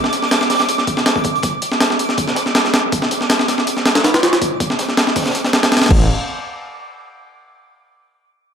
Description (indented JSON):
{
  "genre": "drum and bass, jungle",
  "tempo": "161 BPM",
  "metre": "4/4",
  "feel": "straight",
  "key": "unclear",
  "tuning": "A4 = 439 Hz",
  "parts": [
    { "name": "jungle sampler-style drum kit", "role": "drums", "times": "0.0-6.0 s", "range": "crash cymbal, hi-hat, kick drum, snare drum", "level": "-15 LUFS", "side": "equal", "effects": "overdrive, high-pass filter on hats, high-pass filter on kick, high-pass filter on snare, high-pass filter on cymbals, high-pass filter on room" },
    { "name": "twinkling granular texture", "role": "texture", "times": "0.0-5.9 s", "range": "D6", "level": "-24 LUFS", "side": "right 3 dB", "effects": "built-in reverb" },
    { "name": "crunchy breakbeat drum kit", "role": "drums", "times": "0.1-5.9 s", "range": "hi-hat, snare drum", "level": "-28 LUFS", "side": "right 1 dB", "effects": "none" },
    { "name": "detuned saw bass", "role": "bass", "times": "5.9-6.1 s", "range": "A1", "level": "-16 LUFS", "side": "equal", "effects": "none" }
  ],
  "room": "light reverb",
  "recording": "none",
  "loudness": "-14 LUFS",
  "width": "side -7 dB against mid",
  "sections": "0.0-5.9 A section; 5.9-7.4 B section",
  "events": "none",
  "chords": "none"
}